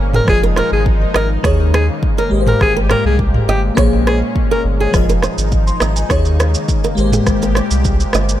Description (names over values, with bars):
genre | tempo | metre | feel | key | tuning
afrobeats | 103 BPM | 4/4 | straight | Ab major | A4 = 440 Hz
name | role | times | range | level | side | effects
crystalline FM electric piano | accompaniment | 0.0-8.4 s | Eb3 to C6 | -21 LUFS | left 3 dB | chorus, phaser
lush unison pad | sustained chords | 0.0-8.4 s | Bb2 to G4 | -23 LUFS | left 1 dB | chorus
round analog bass | bass | 0.0-8.4 s | F1 to Eb2 | -16 LUFS | equal | none
flamenco guitar | riff | 0.1-8.2 s | Ab4 to Eb5 | -23 LUFS | right 6 dB | ping-pong delay
afro-pop drum kit | drums | 0.1-8.4 s | kick drum, rim click, shaker, toms | -17 LUFS | equal | none
bright alto saxophone | melody | 0.2-4.9 s | G4 to Bb4 | -20 LUFS | left 1 dB | ping-pong delay
room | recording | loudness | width
little or no reverb | none | -12 LUFS | side -12 dB against mid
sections
0.0-8.4 A section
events
break 0.0-4.9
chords
0.3 Fm7; 1.4 Eb7sus4; 2.3 Abmaj9; 3.8 Bbm9; 4.9 Fm7; 6.1 Eb7sus4; 7.0 Abmaj9